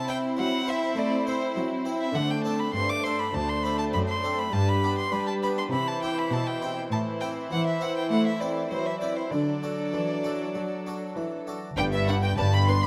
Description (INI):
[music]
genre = classical, baroque-style concerto movement with solo episodes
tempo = 101 BPM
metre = 4/4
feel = straight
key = G major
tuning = A4 = 440 Hz
[part]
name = clear chamber violin section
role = melody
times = 0.0-12.9 s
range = A4 to C6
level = -39 LUFS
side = equal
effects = none
[part]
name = rich violin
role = melody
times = 0.0-12.9 s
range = C5 to D6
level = -33 LUFS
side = equal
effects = none
[part]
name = rich chamber violin section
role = second line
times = 0.0-12.8 s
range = D4 to B4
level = -35 LUFS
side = equal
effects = none
[part]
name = harpsichord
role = accompaniment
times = 0.0-12.9 s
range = D2 to G5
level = -38 LUFS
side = equal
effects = none
[part]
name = rich studio viola section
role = accompaniment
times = 0.0-12.8 s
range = E3 to D4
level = -35 LUFS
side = equal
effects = none
[part]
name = rich symphonic cello section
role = bass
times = 0.0-12.9 s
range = D2 to A3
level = -32 LUFS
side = equal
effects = none
[part]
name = rich studio double bass section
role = bass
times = 11.8-12.9 s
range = G1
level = -31 LUFS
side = equal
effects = none
[sound]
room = moderate recital hall reverb, RT60 1.6 s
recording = none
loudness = -27 LUFS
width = mono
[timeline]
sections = 0.0-11.8 A section; 11.8-12.9 B section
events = none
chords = 0.0 Am/C; 2.2 D7; 4.5 G; 5.7 C; 6.9 Am; 9.3 D; 11.8 G